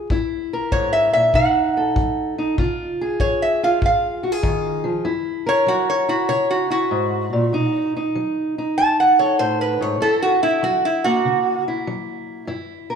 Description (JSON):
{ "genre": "acoustic country blues, solo or duo", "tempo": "97 BPM", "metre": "4/4", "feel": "swing 68% on 8ths", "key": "F# mixolydian", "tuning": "A4 = 440 Hz", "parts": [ { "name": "fingerpicked steel-string acoustic guitar", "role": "accompaniment", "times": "0.0-13.0 s", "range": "F#2 to A#4", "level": "-22 LUFS", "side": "left 1 dB", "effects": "none" }, { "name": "kick drum", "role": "drums", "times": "0.1-4.6 s", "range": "none", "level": "-23 LUFS", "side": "left 1 dB", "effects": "none" }, { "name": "metal-body resonator slide guitar", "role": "melody", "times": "0.7-11.6 s", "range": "E4 to A5", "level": "-18 LUFS", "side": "right 1 dB", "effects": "none" } ], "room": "moderate recital hall reverb, RT60 1.6 s", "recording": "recorded in a church or concert hall", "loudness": "-17 LUFS", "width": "side -7 dB against mid", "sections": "0.0-5.1 A section; 5.1-13.0 B section", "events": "resonator guitar played with a steel bar solo 5.1-13.0", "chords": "0.1 F#7; 1.3 B7; 2.6 C#; 5.1 F#7; 7.5 B7; 10.0 F#7" }